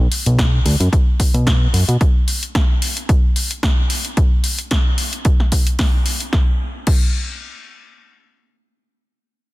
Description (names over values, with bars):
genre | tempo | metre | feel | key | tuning
nu-disco, nu disco | 111 BPM | 4/4 | swing 55% on 16ths | B minor | A4 = 437 Hz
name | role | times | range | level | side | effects
fat analog bass | bass | 0.0-2.0 s | B1 to B2 | -15 LUFS | equal | none
house drum kit | drums | 0.1-7.0 s | crash cymbal, hi-hat, snare drum | -23 LUFS | left 1 dB | none
electronic kick drum | drums | 0.4-7.0 s | none | -16 LUFS | equal | none
room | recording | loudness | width
little or no reverb | dense, heavily limited modern master | -14 LUFS | side -19 dB against mid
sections
0.0-6.3 A section; 6.3-9.5 B section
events
filter sweep on analog synth bass 0.0-2.0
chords
none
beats
0.38 0.92 1.47 | 2.00 2.55 3.09 3.63 | 4.17 4.71 5.25 5.79 | 6.33 6.87